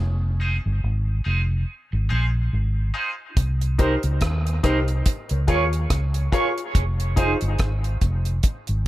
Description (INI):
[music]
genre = dub reggae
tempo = 71 BPM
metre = 4/4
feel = swing 57% on 16ths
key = F minor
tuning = A4 = 440 Hz
[part]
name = vintage muted fingered electric bass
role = bass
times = 0.0-8.8 s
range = F1 to Eb2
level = -22 LUFS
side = equal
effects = none
[part]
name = clean electric guitar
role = accompaniment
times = 0.4-7.3 s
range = Eb4 to Db5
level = -28 LUFS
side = right 4 dB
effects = tremolo, high-pass filter, dub echo
[part]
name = bright upright piano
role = stabs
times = 0.4-7.4 s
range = Eb4 to Db5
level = -29 LUFS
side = left 3 dB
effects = high-pass filter, dub echo
[part]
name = deep reggae drum kit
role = drums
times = 3.4-8.8 s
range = hi-hat, kick drum, rim click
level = -22 LUFS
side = equal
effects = none
[sound]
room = studio reverb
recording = none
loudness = -20 LUFS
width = side -16 dB against mid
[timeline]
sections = 0.0-8.9 A section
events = break 0.0-3.4; filter sweep 0.0-8.9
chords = 0.0 Fm7; 3.4 Cm7; 5.1 Bbm7; 6.7 Fm7